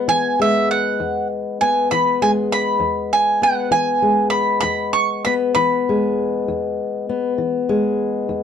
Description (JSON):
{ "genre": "acoustic country blues, solo or duo", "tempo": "66 BPM (dotted quarters)", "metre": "12/8", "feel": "straight", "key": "E major", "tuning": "A4 = 441 Hz", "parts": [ { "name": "fingerpicked old ladder-braced acoustic guitar", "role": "accompaniment", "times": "0.0-8.4 s", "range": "E2 to B3", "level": "-20 LUFS", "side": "left 4 dB", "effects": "none" }, { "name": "mandolin", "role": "melody", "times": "0.1-7.3 s", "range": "E5 to C#6", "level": "-18 LUFS", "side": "right 2 dB", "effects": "none" } ], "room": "moderate studio reverb, RT60 0.5 s", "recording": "dark, warm production", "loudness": "-16 LUFS", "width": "side -8 dB against mid", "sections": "0.0-8.4 A section", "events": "none", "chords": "0.0 E" }